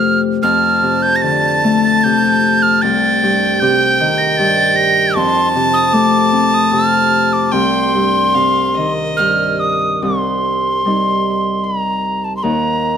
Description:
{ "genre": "celtic folk, Celtic slow air", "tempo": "75 BPM", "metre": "3/4", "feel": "rubato", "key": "C dorian", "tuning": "A4 = 440 Hz", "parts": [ { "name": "mellow wooden whistle", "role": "melody", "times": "0.0-13.0 s", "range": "A5 to Bb6", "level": "-15 LUFS", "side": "right 1 dB", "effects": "none" }, { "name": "Celtic harp", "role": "accompaniment", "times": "0.0-13.0 s", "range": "C2 to Eb4", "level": "-16 LUFS", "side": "left 2 dB", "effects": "none" }, { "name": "rich fiddle", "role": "second line", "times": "0.4-9.6 s", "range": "Eb5 to A5", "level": "-18 LUFS", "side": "right 1 dB", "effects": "none" } ], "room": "light reverb", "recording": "close, detailed microphones", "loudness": "-12 LUFS", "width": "side -8 dB against mid", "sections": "0.0-10.0 A section; 10.0-13.0 B section", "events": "none", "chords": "0.4 F6; 2.8 Cm; 5.2 F; 7.5 Cm; 12.4 Eb5", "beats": "| 0.42 1.23 2.04 | 2.83 3.61 4.38 | 5.16 5.94 6.73 | 7.53 8.34 9.18 | 10.03 10.85 11.65 | 12.43" }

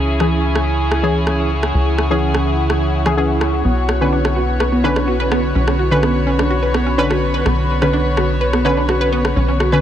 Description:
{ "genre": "melodic techno", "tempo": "126 BPM", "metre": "4/4", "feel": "straight", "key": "unclear", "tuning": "A4 = 442 Hz", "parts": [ { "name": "dark studio string section", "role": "sustained chords", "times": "0.0-9.8 s", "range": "C#3 to C#5", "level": "-23 LUFS", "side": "equal", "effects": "low-pass filter" }, { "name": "synth brass stab", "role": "stabs", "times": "0.0-9.8 s", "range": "D3 to B4", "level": "-20 LUFS", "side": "left 1 dB", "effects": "chorus, tape echo" }, { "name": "tight sequencer bass", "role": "bass", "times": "0.0-9.8 s", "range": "B1 to C#2", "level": "-19 LUFS", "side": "equal", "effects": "none" }, { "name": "ethereal airy pad", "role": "texture", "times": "0.0-9.8 s", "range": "D3 to C#6", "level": "-24 LUFS", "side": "left 1 dB", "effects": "ensemble chorus, built-in reverb" }, { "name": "electronic rim click", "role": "drums", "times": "0.2-9.7 s", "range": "none", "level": "-22 LUFS", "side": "equal", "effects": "overdrive" }, { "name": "wide unison pluck", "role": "arpeggios", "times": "3.6-9.8 s", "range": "B3 to B4", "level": "-20 LUFS", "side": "right 1 dB", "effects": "tape echo" } ], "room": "light reverb", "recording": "none", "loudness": "-14 LUFS", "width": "side -10 dB against mid", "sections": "0.0-9.8 A section", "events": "filter sweep on synth stab 0.0-9.8", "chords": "0.0 C#m; 3.6 Bmadd9", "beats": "0.32 0.79 1.27 | 1.74 2.22 2.70 3.17 | 3.65 4.12 4.60 5.08 | 5.55 6.03 6.51 6.98 | 7.46 7.93 8.41 8.89 | 9.36" }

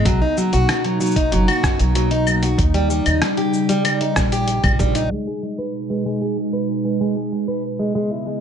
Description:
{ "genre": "folktronica", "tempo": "95 BPM", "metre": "4/4", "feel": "straight", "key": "G# minor", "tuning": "A4 = 440 Hz", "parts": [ { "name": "warbly tape-like pad", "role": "sustained chords", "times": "0.0-8.4 s", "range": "B2 to E4", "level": "-23 LUFS", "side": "equal", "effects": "chorus, built-in reverb" }, { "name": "picked plugged-in steel-string acoustic guitar", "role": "arpeggios", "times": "0.0-8.4 s", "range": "F#3 to B4", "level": "-22 LUFS", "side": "right 1 dB", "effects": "low-pass filter, ping-pong delay" }, { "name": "upright bass", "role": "bass", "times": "0.1-5.1 s", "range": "F#1 to D#2", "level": "-20 LUFS", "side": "equal", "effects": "tube saturation" }, { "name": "electronic kick drum", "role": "drums", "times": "0.1-4.9 s", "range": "none", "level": "-20 LUFS", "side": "equal", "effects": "none" }, { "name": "lo-fi sampler-style drum kit", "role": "drums", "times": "0.1-5.1 s", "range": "claves, hi-hat, rim click, shaker", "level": "-23 LUFS", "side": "left 2 dB", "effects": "low-pass filter on hats, low-pass filter on perc, low-pass filter on snare, low-pass filter on room" } ], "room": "light reverb, digital ambience", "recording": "low-pass filter, nothing above 11.0 kHz", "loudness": "-17 LUFS", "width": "side -8 dB against mid", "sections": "0.0-5.1 A section; 5.1-8.4 B section", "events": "filter sweep on steel-string acoustic guitar 5.1-8.4; filter sweep 5.1-8.4", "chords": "0.1 Bmaj7; 2.6 D#7; 5.1 G#m; 7.6 C#m7", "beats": "| 0.06 0.69 1.32 1.95 | 2.58 3.21 3.85 4.48 | 5.11 5.74 6.37 7.00 | 7.63 8.27" }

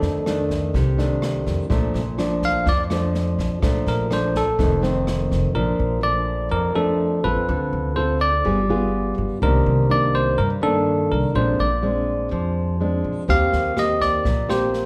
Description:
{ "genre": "bossa nova", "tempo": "124 BPM", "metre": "4/4", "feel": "straight", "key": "Bb major", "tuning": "A4 = 438 Hz", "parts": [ { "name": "barky tine electric piano", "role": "melody", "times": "0.0-14.9 s", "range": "A4 to F5", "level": "-25 LUFS", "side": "equal", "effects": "none" }, { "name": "nylon-string guitar", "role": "accompaniment", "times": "0.0-14.9 s", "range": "F2 to A4", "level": "-25 LUFS", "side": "equal", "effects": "none" }, { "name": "upright bass", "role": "bass", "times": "0.0-14.9 s", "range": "F1 to G2", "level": "-26 LUFS", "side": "equal", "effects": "none" }, { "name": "open jazz drum kit", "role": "drums", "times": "0.0-5.4, 13.3-14.8 s", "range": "kick drum, rim click, snare drum", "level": "-30 LUFS", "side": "equal", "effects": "none" } ], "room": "wet recital hall reverb, RT60 1.4 s", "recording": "recorded in a church or concert hall", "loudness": "-21 LUFS", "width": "mono", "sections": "0.0-5.6 A section; 5.6-14.9 B section", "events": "tine electric piano solo 0.0-5.6", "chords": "0.0 F6; 1.7 Bbmaj7; 4.6 F7; 5.6 Bbmaj7; 7.5 Dm7; 8.5 G7b9; 9.4 Cm9; 11.4 Bb9; 13.3 Eb6", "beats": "0.26 0.74 1.22 | 1.70 2.19 2.67 3.15 | 3.63 4.11 4.59 5.08 | 5.56 6.04 6.52 7.00 | 7.49 7.97 8.45 8.94 | 9.42 9.90 10.38 10.87 | 11.35 11.84 12.32 12.80 | 13.29 13.77 14.25 14.74" }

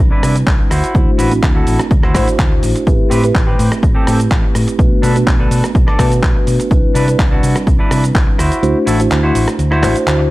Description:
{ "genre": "filtered disco house", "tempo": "125 BPM", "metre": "4/4", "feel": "straight", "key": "unclear", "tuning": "A4 = 440 Hz", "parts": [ { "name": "mellow tine electric piano", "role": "accompaniment", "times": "0.0-10.3 s", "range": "G3 to C5", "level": "-18 LUFS", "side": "equal", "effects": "slow stereo tremolo, phaser, sidechain pumping, low-pass filter" }, { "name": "hollow-body short-scale fingered electric bass", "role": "bass", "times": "0.0-10.3 s", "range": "A1 to C3", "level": "-16 LUFS", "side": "equal", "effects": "sidechain pumping, low-pass filter" }, { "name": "dusty soul sampler-style drum kit", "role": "drums", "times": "0.0-10.2 s", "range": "handclaps, hi-hat, rim click, shaker", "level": "-22 LUFS", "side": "equal", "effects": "sidechain pumping on hats, sidechain pumping on perc" }, { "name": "semi-hollow electric guitar", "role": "riff", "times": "0.1-10.2 s", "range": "C4 to D5", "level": "-20 LUFS", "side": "right 1 dB", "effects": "sidechain pumping, low-pass filter" }, { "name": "electronic kick drum", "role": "drums", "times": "0.5-8.3 s", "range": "none", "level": "-14 LUFS", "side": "equal", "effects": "none" } ], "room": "little or no reverb", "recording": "none", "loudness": "-11 LUFS", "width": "side -18 dB against mid", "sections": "0.0-10.3 A section", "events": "kick drops out 8.6-10.3", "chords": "0.0 Cmaj9; 0.7 D9; 2.9 Am9; 4.8 Bm7; 6.7 Cmaj9; 8.4 D9", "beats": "0.47 | 0.95 1.43 1.91 2.39 | 2.87 3.35 3.83 4.31 | 4.79 5.27 5.75 6.23 | 6.71 7.19 7.67 8.15 | 8.63 9.11 9.59 10.07" }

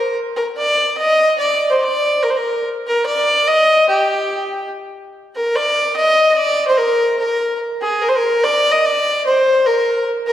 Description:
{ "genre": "medieval", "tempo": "145 BPM", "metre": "3/4", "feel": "straight", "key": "unclear", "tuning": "A4 = 441 Hz", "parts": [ { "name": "warm fiddle", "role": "solo", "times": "0.0-10.3 s", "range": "G4 to Eb5", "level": "-14 LUFS", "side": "equal", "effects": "none" } ], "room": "wet concert hall reverb, RT60 2.0 s", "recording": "heard from further back in the room, lossy compression artefacts", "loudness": "-14 LUFS", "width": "side -11 dB against mid", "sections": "0.0-5.1 A section; 5.1-10.3 A section", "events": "none", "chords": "none", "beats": "| 0.16 0.58 0.99 | 1.41 1.82 2.24 | 2.65 3.06 3.48 | 3.89 4.31 4.72 | 5.13 5.55 5.96 | 6.37 6.78 7.19 | 7.61 8.02 8.43 | 8.84 9.25 9.66 | 10.07" }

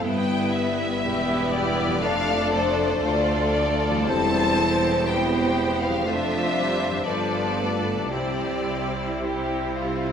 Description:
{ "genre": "classical, slow romantic movement for symphony orchestra", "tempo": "54-62 BPM", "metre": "4/4", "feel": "rubato", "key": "C major", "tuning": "A4 = 441 Hz", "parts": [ { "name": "rich studio violin section", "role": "melody", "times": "0.0-10.1 s", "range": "C5 to A5", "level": "-28 LUFS", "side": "left 4 dB", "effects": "none" }, { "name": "warm studio violin section", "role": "second line", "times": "0.0-10.1 s", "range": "E4 to D5", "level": "-27 LUFS", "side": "left 2 dB", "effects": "none" }, { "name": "warm studio viola section", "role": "accompaniment", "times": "0.0-10.1 s", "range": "F3 to F4", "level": "-28 LUFS", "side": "right 2 dB", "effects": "none" }, { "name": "warm French horn section", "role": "sustained chords", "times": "0.0-10.1 s", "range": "G3 to F4", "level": "-29 LUFS", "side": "left 1 dB", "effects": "none" }, { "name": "concert harp", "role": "arpeggios", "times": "0.0-10.1 s", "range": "E2 to D5", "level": "-32 LUFS", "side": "left 5 dB", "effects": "none" }, { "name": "clear chamber cello section", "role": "bass", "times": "0.0-10.1 s", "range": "D2 to C3", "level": "-30 LUFS", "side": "right 4 dB", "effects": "none" }, { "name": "rich chamber double bass section", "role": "bass", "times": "0.0-10.1 s", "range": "E1 to D2", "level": "-32 LUFS", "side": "right 4 dB", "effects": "none" } ], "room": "wet concert hall reverb, RT60 2.2 s", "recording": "none", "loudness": "-21 LUFS", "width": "side -7 dB against mid", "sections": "0.0-10.1 A section", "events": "none", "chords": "0.1 Em/G; 2.0 Dm/F; 4.1 C/E; 6.1 Dm7/F; 7.1 G7; 8.1 C", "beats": "| 0.06 1.04 2.04 3.02 | 4.07 5.07 6.07 7.07 | 8.13 9.24" }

